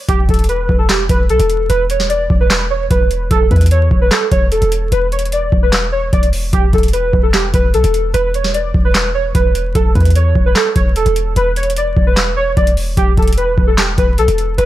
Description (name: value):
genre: hip hop, trap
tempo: 149 BPM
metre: 4/4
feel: half-time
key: E dorian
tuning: A4 = 440 Hz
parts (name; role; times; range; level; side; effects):
- warbly lo-fi synth keys; melody; 0.1-14.7 s; G4 to D5; -16 LUFS; right 1 dB; chorus, low-pass filter
- warm 808-style bass; bass; 0.1-14.7 s; E1 to E2; -16 LUFS; equal; none
- booming analog drum machine; drums; 0.1-14.7 s; handclaps, hi-hat, kick drum, snare drum; -14 LUFS; equal; none
room: little or no reverb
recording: vinyl crackle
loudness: -11 LUFS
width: side -14 dB against mid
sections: 0.0-14.7 A section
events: none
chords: 0.1 E5; 1.7 N.C.; 6.5 E5; 8.1 N.C.; 13.0 E5